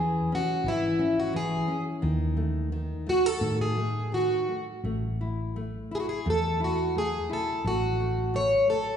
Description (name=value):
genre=fado-style ballad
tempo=83-90 BPM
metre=4/4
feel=rubato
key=unclear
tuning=A4 = 440 Hz
part: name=picked plugged-in twelve-string acoustic guitar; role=melody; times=0.0-9.0 s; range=E4 to C#5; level=-26 LUFS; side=equal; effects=none
part: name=nylon-string guitar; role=accompaniment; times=0.0-9.0 s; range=D#3 to E4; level=-33 LUFS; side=left 3 dB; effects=none
part: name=hollow-body short-scale fingered electric bass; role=bass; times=0.0-8.5 s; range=G#1 to A2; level=-31 LUFS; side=equal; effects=none
room=wet recital hall reverb, RT60 1.7 s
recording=heard from further back in the room, nothing above 10.9 kHz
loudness=-25 LUFS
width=side -8 dB against mid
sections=0.0-9.0 A section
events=none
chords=0.0 C#m/E; 2.0 D#dim; 4.8 A5; 7.7 F#m/A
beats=0.64 1.33 | 2.02 2.72 3.41 4.12 | 4.84 5.56 6.26 6.96 | 7.65 8.34